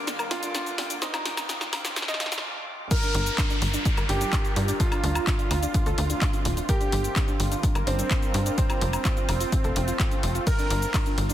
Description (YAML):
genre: progressive house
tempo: 127 BPM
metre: 4/4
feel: straight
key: G minor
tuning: A4 = 440 Hz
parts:
  - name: shimmering ambient pad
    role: sustained chords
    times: 0.0-11.3 s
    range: F2 to Bb4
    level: -35 LUFS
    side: right 1 dB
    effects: chorus, built-in reverb, sidechain pumping
  - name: soft round pluck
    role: arpeggios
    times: 0.0-11.3 s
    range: D4 to Eb5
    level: -35 LUFS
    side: equal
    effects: wide subtle chorus, sidechain pumping, digital delay
  - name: riser and downlifter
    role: sound effects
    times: 0.0-6.7 s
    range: none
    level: -36 LUFS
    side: equal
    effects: none
  - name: drifting glass-harmonics texture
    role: texture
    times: 0.0-2.4 s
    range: D6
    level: -43 LUFS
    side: left 1 dB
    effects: none
  - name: house drum kit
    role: drums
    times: 0.1-11.3 s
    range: crash cymbal, handclaps, hi-hat, ride cymbal, shaker, snare drum, woodblock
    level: -30 LUFS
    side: left 1 dB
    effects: studio reverb, sidechain pumping on hats, sidechain pumping on perc, sidechain pumping on cymbals
  - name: congas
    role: percussion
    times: 0.2-10.8 s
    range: none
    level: -41 LUFS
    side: right 1 dB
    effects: none
  - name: clear concert grand piano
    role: melody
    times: 0.3-11.1 s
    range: C4 to Bb4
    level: -33 LUFS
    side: right 2 dB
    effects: sidechain pumping, digital delay
  - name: soft supersaw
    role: second line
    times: 2.9-11.1 s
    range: C4 to Bb4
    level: -36 LUFS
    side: right 2 dB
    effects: sidechain pumping, digital delay
  - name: electronic kick drum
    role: drums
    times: 2.9-11.0 s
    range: none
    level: -26 LUFS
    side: equal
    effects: studio reverb
  - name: tight sequencer bass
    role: bass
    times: 3.1-11.3 s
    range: D1 to G2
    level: -26 LUFS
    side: equal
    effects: sidechain pumping
room: light reverb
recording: dense, heavily limited modern master, high-pass filter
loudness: -23 LUFS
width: side -12 dB against mid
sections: 0.0-2.9 A section; 2.9-11.3 B section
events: build-up 0.0-2.9; drum fill 0.0-2.4; stop 2.4-2.9; drop 2.9-11.3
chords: 0.0 Gm7; 1.0 F; 2.9 Gm7; 4.8 Dm7; 6.7 Gm7; 8.6 F; 10.5 Gm7